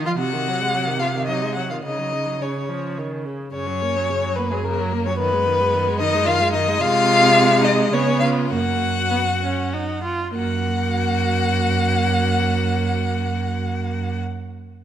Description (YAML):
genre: quick classical-period movement for string quartet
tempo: 95-112 BPM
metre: 3/4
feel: straight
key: F# major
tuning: A4 = 440 Hz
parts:
  - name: rich violin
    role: melody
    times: 0.0-14.2 s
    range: G#3 to F#4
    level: -27 LUFS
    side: left 8 dB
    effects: none
  - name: rich viola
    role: accompaniment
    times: 0.0-14.2 s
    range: B#2 to E#4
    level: -25 LUFS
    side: right 2 dB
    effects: none
  - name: warm cello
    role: bass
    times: 0.0-14.2 s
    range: F#2 to E#3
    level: -24 LUFS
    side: right 4 dB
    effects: none
  - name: rich violin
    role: second line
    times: 0.1-14.2 s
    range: G#4 to F#5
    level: -22 LUFS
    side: left 2 dB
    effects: none
room: moderate recital hall reverb, RT60 1.9 s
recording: none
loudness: -18 LUFS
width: side -10 dB against mid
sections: 0.0-10.3 A section; 10.3-14.0 B section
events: slowing down 6.0-10.3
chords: 0.2 G#7/B#; 1.9 F#5/C#; 3.0 C#sus2; 3.5 F#; 5.2 G#m/F#; 6.8 G#/B#; 7.9 C#7; 8.5 F#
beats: | 0.19 0.73 1.29 | 1.85 2.42 2.98 | 3.54 4.09 4.64 | 5.19 5.73 6.27 | 6.81 7.36 7.92 | 8.51 9.11 9.73 | 10.35 10.96 11.58 | 12.20 12.81 13.43